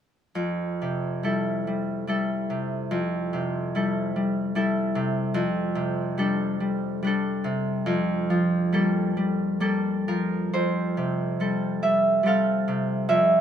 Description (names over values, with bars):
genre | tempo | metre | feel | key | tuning
classical, solo harp piece | 62-75 BPM | 3/4 | rubato | F major | A4 = 440 Hz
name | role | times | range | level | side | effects
Celtic harp | solo | 0.4-13.4 s | F2 to F5 | -23 LUFS | equal | none
room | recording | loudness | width
moderate recital hall reverb, RT60 1.7 s | close, detailed microphones | -23 LUFS | side -9 dB against mid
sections
0.3-10.5 A section; 10.5-13.4 B section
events
none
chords
0.3 Fmaj9; 5.3 F69; 7.9 Gm9/F; 10.5 Fadd9